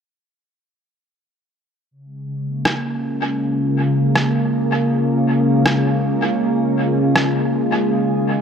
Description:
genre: ambient dub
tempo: 80 BPM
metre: 4/4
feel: swing 59% on 16ths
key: Bb minor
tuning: A4 = 438 Hz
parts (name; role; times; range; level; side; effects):
- soft additive organ-like pad; sustained chords; 2.2-8.4 s; Db3 to Ab4; -17 LUFS; equal; ensemble chorus, built-in reverb
- electronic rim click; drums; 2.7-7.3 s; none; -22 LUFS; equal; dub echo
room: moderate spring reverb, RT60 2.0 s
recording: echo-heavy mix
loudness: -16 LUFS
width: side -7 dB against mid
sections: 1.9-8.4 A section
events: filter sweep on ambient pad 1.9-8.4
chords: 1.9 Bbm7; 7.9 Fm7

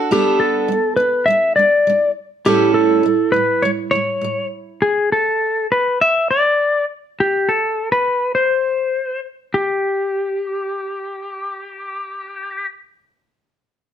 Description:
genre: acoustic pop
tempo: 102 BPM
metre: 4/4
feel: straight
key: G major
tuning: A4 = 440 Hz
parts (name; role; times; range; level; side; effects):
- picked steel-string acoustic guitar; accompaniment; 0.0-5.0 s; A2 to A4; -19 LUFS; right 6 dB; none
- clean lap steel guitar; melody; 0.1-12.7 s; G4 to E5; -16 LUFS; left 2 dB; none
room: moderate studio reverb, RT60 0.8 s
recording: dark, warm production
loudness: -15 LUFS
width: side -9 dB against mid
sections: 0.1-9.5 A section; 9.5-11.9 B section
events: none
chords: 0.1 Gadd9; 2.4 A7; 4.8 N.C.

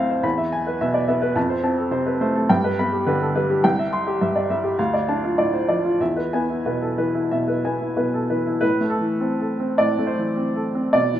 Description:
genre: classical, romantic character piece for solo piano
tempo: 89-109 BPM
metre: 4/4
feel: rubato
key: A minor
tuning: A4 = 438 Hz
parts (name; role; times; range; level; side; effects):
- bright upright piano; solo; 0.0-11.2 s; C2 to C6; -19 LUFS; equal; none
room: wet recital hall reverb, RT60 1.4 s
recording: none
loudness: -19 LUFS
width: side -11 dB against mid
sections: 0.0-8.6 A section; 8.6-11.2 B section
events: none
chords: 0.2 E; 1.4 F; 2.5 G; 3.6 C; 4.8 Dm; 6.0 E; 8.6 Am

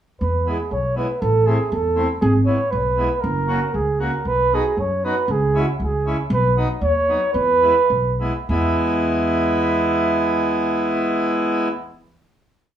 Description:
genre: alpine folk, alpine dance band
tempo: 98-119 BPM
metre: 2/4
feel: straight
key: E major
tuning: A4 = 443 Hz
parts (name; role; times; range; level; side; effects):
- mellow flugelhorn; melody; 0.2-11.7 s; F#4 to E5; -20 LUFS; right 3 dB; none
- upright bass; bass; 0.2-11.9 s; F#1 to F#2; -22 LUFS; equal; none
- accordion; accompaniment; 0.5-11.7 s; F#3 to F#4; -22 LUFS; equal; none
room: wet small room reverb, RT60 0.5 s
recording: band playing live in one room, small room reverb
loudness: -17 LUFS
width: side -10 dB against mid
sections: 0.2-8.5 A section; 8.5-10.9 final chord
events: slowing down 6.3-8.5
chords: 0.2 E; 1.2 Am; 2.2 E/G#; 3.2 F#; 4.3 B; 5.3 C#m; 6.3 B; 7.3 E

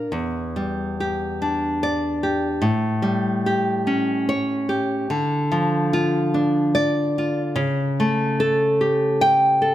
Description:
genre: romantic piece for solo classical guitar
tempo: 73 BPM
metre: 3/4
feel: rubato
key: unclear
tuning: A4 = 440 Hz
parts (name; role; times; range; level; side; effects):
- nylon-string guitar; solo; 0.0-9.7 s; E2 to G5; -19 LUFS; equal; none
room: moderate scoring stage reverb, RT60 1.6 s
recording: none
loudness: -19 LUFS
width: side -13 dB against mid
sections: 0.0-9.7 A section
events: none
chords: 0.1 Em7; 2.6 A7; 5.1 Dm; 7.6 A7/C#

